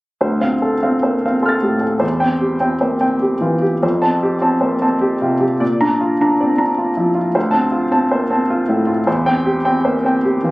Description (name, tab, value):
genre	neoclassical minimalist piano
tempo	95-106 BPM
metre	3/4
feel	rubato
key	D minor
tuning	A4 = 438 Hz
part	clear upright piano	solo	0.2-10.5 s	D2 to A6	-14 LUFS	equal	none
room	moderate small room reverb, RT60 0.6 s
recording	recorded on a phone in the room, club reverb, compression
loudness	-14 LUFS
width	side -20 dB against mid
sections	0.2-10.5 A section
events	none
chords	0.2 Dm7; 2.0 C/E; 3.8 Fadd9; 5.6 Bb; 7.4 Dm7; 9.1 C/E